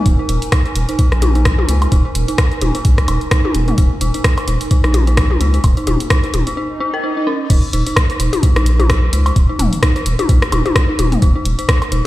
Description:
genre	minimal techno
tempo	129 BPM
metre	4/4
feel	swing 57% on 16ths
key	unclear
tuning	A4 = 440 Hz
part	warbly tape-like pad	texture	0.0-6.6 s	Eb4 to Ab5	-28 LUFS	right 2 dB	chorus, built-in reverb, sidechain pumping
part	saturated sub bass	bass	0.1-12.0 s	Eb1 to Db2	-15 LUFS	equal	sidechain pumping
part	electronic kick drum	drums	0.1-11.8 s	none	-13 LUFS	equal	none
part	punchy analog drum machine	drums	0.1-12.0 s	crash cymbal, hi-hat, rim click	-21 LUFS	equal	overdrive
part	dark detuned synth bell	riff	0.2-12.0 s	Db4 to Bb4	-22 LUFS	equal	chorus, sidechain pumping, dub echo
part	electronic woodblock and toms	percussion	0.5-11.9 s	none	-22 LUFS	left 3 dB	dub echo
part	swell	sound effects	6.7-7.5 s	none	-27 LUFS	right 2 dB	none
room	light reverb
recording	played on a big sound system in a bare room, large studio reverb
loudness	-12 LUFS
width	side -16 dB against mid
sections	0.0-7.5 A section; 7.5-12.1 B section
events	filter sweep on synth bell 0.0-7.5; break 6.6-7.5; swell 6.7-7.5; drop 7.5-12.1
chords	0.0 Ebsus4; 7.5 Eb5

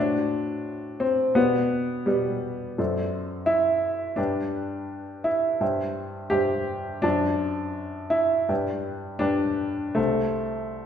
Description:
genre	classical, romantic character piece for solo piano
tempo	72-88 BPM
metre	4/4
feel	rubato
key	G major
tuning	A4 = 440 Hz
part	warm baby grand piano	solo	0.0-10.9 s	C2 to A5	-23 LUFS	equal	none
room	wet recital hall reverb, RT60 1.4 s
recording	recorded in a church or concert hall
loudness	-23 LUFS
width	side -8 dB against mid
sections	0.0-10.9 A section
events	none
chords	0.0 D7/A; 1.4 G/B; 2.8 D7/F#; 4.2 G; 5.6 C/G; 7.0 D7/F#; 8.5 G; 10.0 Am/C

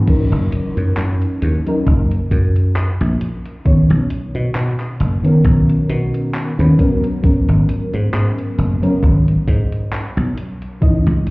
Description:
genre	vaporwave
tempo	67 BPM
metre	4/4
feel	swing 55% on 16ths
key	F# major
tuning	A4 = 440 Hz
part	mellow FM electric piano	accompaniment	0.1-11.1 s	D#3 to D#5	-18 LUFS	equal	ensemble chorus, cassette tape, analog delay
part	dry thumbed slap bass	bass	0.1-11.2 s	F#1 to B2	-16 LUFS	equal	none
part	electronic kick drum	drums	0.1-11.0 s	none	-14 LUFS	equal	none
part	gated 80s digital drum machine	drums	0.1-11.3 s	crash cymbal, handclaps, hi-hat	-26 LUFS	equal	gated reverb
room	light reverb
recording	heard muffled through a wall, club reverb, EQ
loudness	-14 LUFS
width	side -24 dB against mid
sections	0.1-11.3 A section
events	none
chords	0.1 F#6; 3.7 Bmaj9; 6.8 G#m11

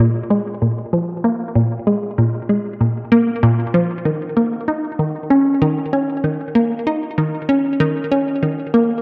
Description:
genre	ambient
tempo	96 BPM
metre	4/4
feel	straight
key	unclear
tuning	A4 = 440 Hz
part	hollow square pluck	solo	0.0-8.9 s	Bb2 to Eb4	-18 LUFS	equal	chorus, delay
room	wet spring reverb, RT60 2.5 s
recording	echo-heavy mix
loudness	-18 LUFS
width	mono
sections	0.0-9.0 A section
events	none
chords	none

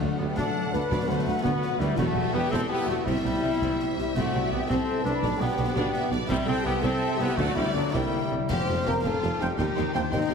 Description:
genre	cinematic, heroic adventure film score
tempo	111 BPM (dotted quarters)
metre	6/8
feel	straight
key	unclear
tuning	A4 = 436 Hz
part	clear symphonic violin section	melody	0.0-10.3 s	C4 to G5	-38 LUFS	left 4 dB	none
part	bright clarinet	second line	0.0-8.5 s	F#3 to D4	-35 LUFS	equal	none
part	mellow large flute ensemble	second line	0.0-10.3 s	D5 to C6	-36 LUFS	left 1 dB	none
part	dark studio viola section	accompaniment	0.0-10.3 s	F#3 to B4	-36 LUFS	right 1 dB	none
part	dark trombone section	sustained chords	0.0-10.0 s	Eb3 to D4	-38 LUFS	right 4 dB	none
part	warm French horn section	sustained chords	0.0-10.3 s	D4 to C5	-30 LUFS	left 4 dB	none
part	concert harp	arpeggios	0.0-10.3 s	B2 to C6	-36 LUFS	left 10 dB	none
part	mellow trumpet section	stabs	0.0-10.0 s	F#3 to G5	-34 LUFS	right 1 dB	none
part	rich symphonic cello section	bass	0.0-10.3 s	D2 to D3	-35 LUFS	right 2 dB	none
part	rich symphonic double bass section	bass	0.0-10.3 s	E1 to Eb2	-33 LUFS	right 3 dB	none
part	warm tuba	bass	0.0-10.3 s	E1 to Eb2	-35 LUFS	right 4 dB	none
part	timpani	percussion	0.0-1.4, 7.4-9.0 s	F2 to D3	-36 LUFS	left 3 dB	none
part	warm symphonic violin section	second line	0.4-10.3 s	G4 to C6	-39 LUFS	left 1 dB	none
part	concert snare drum, concert bass drum and clash cymbals	drums	0.4-10.3 s	none	-35 LUFS	equal	none
part	clear oboe	second line	8.5-10.3 s	F5 to G5	-36 LUFS	equal	none
room	wet scoring stage reverb, RT60 1.8 s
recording	heavily compressed radio sound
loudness	-24 LUFS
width	side -6 dB against mid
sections	0.0-8.5 A section; 8.5-10.3 B section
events	none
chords	0.0 D; 0.9 Bm/D; 2.0 Em; 3.1 C; 5.2 G/B; 6.3 C; 7.4 D; 7.9 C7; 8.5 Fsus2; 9.6 Cm/Eb

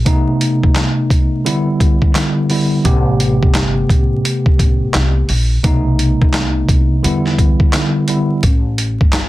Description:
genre	hip hop, boom-bap hip-hop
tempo	86 BPM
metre	4/4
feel	swing 63% on 16ths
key	A minor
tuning	A4 = 441 Hz
part	mellow tine electric piano	accompaniment	0.1-8.4 s	C3 to G4	-16 LUFS	equal	medium stereo tremolo, cassette tape
part	boom bap sampler-style drum kit	drums	0.1-9.3 s	handclaps, hi-hat, kick drum, snare drum	-14 LUFS	equal	none
part	upright bass	bass	2.9-9.3 s	G1 to E2	-18 LUFS	equal	none
room	light reverb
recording	dense, heavily limited modern master, vinyl crackle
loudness	-12 LUFS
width	side -16 dB against mid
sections	0.0-8.4 A section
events	break 0.1-2.9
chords	0.1 B7b9; 1.5 Em7; 2.9 Am9; 5.6 B7b9; 7.0 Em7; 8.4 A7(no3)

